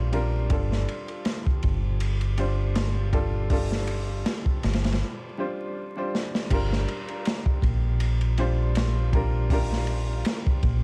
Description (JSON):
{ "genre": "trip hop", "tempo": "80 BPM", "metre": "4/4", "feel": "swing 55% on 16ths", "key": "G minor", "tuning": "A4 = 440 Hz", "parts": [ { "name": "bright upright piano", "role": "accompaniment", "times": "0.0-10.8 s", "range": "G3 to C5", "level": "-34 LUFS", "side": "equal", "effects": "tremolo, tape echo" }, { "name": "deep dub fingered electric bass", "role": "bass", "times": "0.0-10.8 s", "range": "G1 to Bb1", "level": "-27 LUFS", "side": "equal", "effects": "none" }, { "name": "crunchy breakbeat drum kit", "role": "drums", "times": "0.1-10.8 s", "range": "crash cymbal, hi-hat, kick drum, ride cymbal, snare drum", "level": "-30 LUFS", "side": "equal", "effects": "none" } ], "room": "small room ambience", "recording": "dark, warm production, vinyl crackle", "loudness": "-26 LUFS", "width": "mono", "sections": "0.0-6.5 A section; 6.5-10.8 B section", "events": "break 5.0-6.5; drum fill 6.1-6.5", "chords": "0.0 Gm7; 0.5 Dm/G; 6.5 Gm7" }